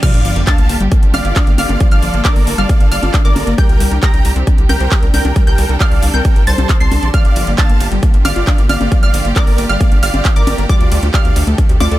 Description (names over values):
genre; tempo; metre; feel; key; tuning
uplifting trance; 135 BPM; 4/4; straight; G minor; A4 = 440 Hz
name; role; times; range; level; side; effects
dense compressed supersaw; melody; 0.0-12.0 s; F4 to C6; -21 LUFS; right 2 dB; sidechain pumping, dub echo
analog pluck; second line; 0.0-12.0 s; D6 to C7; -24 LUFS; right 1 dB; chorus, sidechain pumping, dub echo
rich studio string section; sustained chords; 0.0-12.0 s; C3 to A4; -26 LUFS; right 2 dB; sidechain pumping
wide unison pluck; arpeggios; 0.0-12.0 s; F3 to D5; -22 LUFS; left 3 dB; sidechain pumping, dub echo
big-room dance drum kit; drums; 0.0-12.0 s; congas, crash cymbal, handclaps, hi-hat, ride cymbal; -22 LUFS; left 1 dB; none
electronic kick drum; drums; 0.0-11.7 s; none; -12 LUFS; equal; none
sub drop; sound effects; 0.0-1.8 s; none; -22 LUFS; equal; none
tight sequencer bass; bass; 0.1-12.0 s; G1 to D2; -16 LUFS; equal; sidechain pumping
room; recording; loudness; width
little or no reverb; high-pass filter; -10 LUFS; side -15 dB against mid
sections
0.0-12.0 A section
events
drop 0.0-12.0; impact 0.0-1.8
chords
0.0 Gm7; 3.6 Csus2; 7.1 Gm7; 10.7 Dsus4